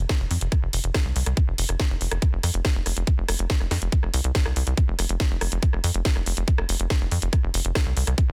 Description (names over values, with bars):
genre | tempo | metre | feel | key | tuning
psychedelic trance | 141 BPM | 4/4 | straight | unclear | A4 = 439 Hz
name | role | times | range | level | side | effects
tight sequencer bass | bass | 0.0-8.3 s | F1 to F2 | -27 LUFS | equal | none
electronic kick drum | drums | 0.1-8.3 s | none | -24 LUFS | equal | none
garage drum kit | drums | 0.1-8.3 s | hi-hat, rim click, snare drum | -31 LUFS | equal | none
room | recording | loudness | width
digital ambience | dense, heavily limited modern master | -24 LUFS | mono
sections
0.0-8.3 A section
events
none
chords
none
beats
0.09 0.52 0.94 | 1.37 1.80 2.22 2.65 | 3.07 3.50 3.92 4.35 | 4.78 5.20 5.63 6.05 | 6.48 6.90 7.33 7.75 | 8.18